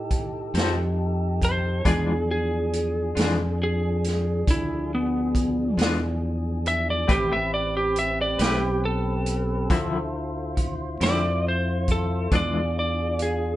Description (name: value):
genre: slow blues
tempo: 46 BPM (dotted quarters)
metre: 12/8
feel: straight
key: unclear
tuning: A4 = 442 Hz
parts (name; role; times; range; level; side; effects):
- tonewheel organ; sustained chords; 0.0-13.6 s; F3 to C5; -32 LUFS; equal; slow rotary speaker, overdrive
- fingered electric bass; bass; 0.0-13.6 s; A1 to A2; -27 LUFS; equal; none
- vintage drum kit; drums; 0.1-13.4 s; hi-hat, kick drum, snare drum; -26 LUFS; equal; none
- semi-hollow electric guitar; accompaniment; 0.5-12.6 s; D3 to C5; -26 LUFS; left 3 dB; tremolo
- lightly driven lead guitar; melody; 1.4-13.6 s; B3 to E5; -26 LUFS; equal; none
room: moderate studio reverb, RT60 0.6 s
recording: band playing live in one room, nothing above 10.9 kHz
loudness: -22 LUFS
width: side -14 dB against mid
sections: 0.0-13.6 A section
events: none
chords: 0.0 F7; 1.9 E7b9; 7.1 Am9; 9.7 Dm9; 12.3 E7b9